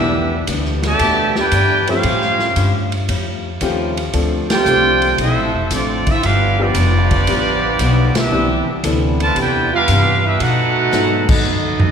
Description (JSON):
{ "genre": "jazz, big band swing", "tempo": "115 BPM", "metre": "4/4", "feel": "swing 69% on 8ths", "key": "C major", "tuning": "A4 = 437 Hz", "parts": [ { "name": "clear trumpet section", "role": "melody", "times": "0.0-11.9 s", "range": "B3 to A5", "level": "-17 LUFS", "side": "right 1 dB", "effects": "none" }, { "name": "mellow trombone section", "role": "second line", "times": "0.0-11.9 s", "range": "B2 to G4", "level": "-23 LUFS", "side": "right 4 dB", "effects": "none" }, { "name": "picked acoustic archtop guitar", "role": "accompaniment", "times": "0.0-11.8 s", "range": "G2 to G4", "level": "-25 LUFS", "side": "left 4 dB", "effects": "none" }, { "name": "warm grand piano", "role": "accompaniment", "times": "0.0-11.3 s", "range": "E3 to A4", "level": "-23 LUFS", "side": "left 2 dB", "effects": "none" }, { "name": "upright bass", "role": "bass", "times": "0.0-11.9 s", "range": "F1 to B2", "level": "-19 LUFS", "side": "equal", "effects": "none" }, { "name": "swinging big-band drum kit", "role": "drums", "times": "0.5-11.9 s", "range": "crash cymbal, hi-hat, kick drum, ride cymbal, snare drum, toms", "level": "-22 LUFS", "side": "equal", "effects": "none" } ], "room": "wet scoring stage reverb, RT60 2.0 s", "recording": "recorded in a church or concert hall", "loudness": "-13 LUFS", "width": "side -7 dB against mid", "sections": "0.0-11.9 A section", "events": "band accent 4.4, 8.1, 11.2; drum fill 10.9-11.9", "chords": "0.0 Em7; 2.0 A7alt; 4.1 Dm7; 6.2 G7; 8.3 Cmaj9; 10.4 B7" }